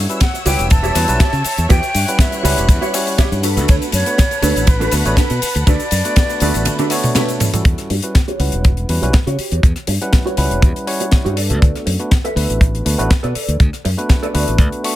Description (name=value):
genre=nu-disco, nu disco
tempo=121 BPM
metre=4/4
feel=straight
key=E dorian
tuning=A4 = 440 Hz
part: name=bright tine electric piano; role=accompaniment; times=0.0-15.0 s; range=G3 to C#6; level=-23 LUFS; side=equal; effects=sidechain pumping, ping-pong delay
part: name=rich studio string section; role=sustained chords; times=0.0-7.6 s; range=B4 to F#6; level=-27 LUFS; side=left 1 dB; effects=sidechain pumping
part: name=modern bright fingered electric bass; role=bass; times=0.0-14.7 s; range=E1 to C#3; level=-18 LUFS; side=equal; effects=none
part: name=tight funk drum kit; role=drums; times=0.1-14.9 s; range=cabasa, hi-hat, ride cymbal, rim click, snare drum, toms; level=-21 LUFS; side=left 2 dB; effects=none
part: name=breathy mellow silver concert flute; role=melody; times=0.2-7.1 s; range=B4 to A5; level=-22 LUFS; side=equal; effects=tape echo
part: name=mellow electric guitar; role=riff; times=0.2-14.6 s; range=D4 to E5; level=-24 LUFS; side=right 3 dB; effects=ensemble chorus, low-pass filter, ping-pong delay
part: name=kick drum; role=drums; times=0.2-14.7 s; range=none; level=-12 LUFS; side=equal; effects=none
room=studio reverb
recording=none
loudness=-13 LUFS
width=side -14 dB against mid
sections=0.0-7.7 A section; 7.7-15.0 B section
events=drop 0.0-7.7; drum fill 6.7-7.7; band accent 7.2; filter sweep on clean electric guitar 7.7-15.0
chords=0.0 Em69; 3.4 Bm7; 7.7 Em69; 11.4 Bm7